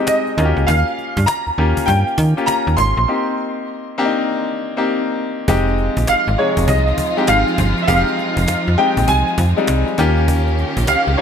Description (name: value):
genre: R&B, new jack swing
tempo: 100 BPM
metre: 4/4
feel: swing 63% on 16ths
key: F minor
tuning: A4 = 440 Hz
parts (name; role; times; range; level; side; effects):
- clear concert grand piano; accompaniment; 0.0-11.2 s; C3 to Bb4; -20 LUFS; left 3 dB; none
- clear grand piano; melody; 0.1-11.2 s; Db5 to C6; -19 LUFS; right 1 dB; ensemble chorus
- cajon; drums; 0.1-11.1 s; none; -25 LUFS; right 1 dB; none
- slap-like FM bass; bass; 0.4-11.2 s; F1 to Eb3; -17 LUFS; right 1 dB; none
- warm studio string section; sustained chords; 5.5-11.2 s; Eb3 to G4; -24 LUFS; right 1 dB; none
room: light reverb, studio reverb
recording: bright 1980s-style digital production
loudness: -14 LUFS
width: side -7 dB against mid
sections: 0.0-5.5 A section; 5.5-11.2 B section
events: break 3.1-5.5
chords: 0.4 Eb7; 3.1 Cm7; 5.5 Fm7; 10.0 Eb7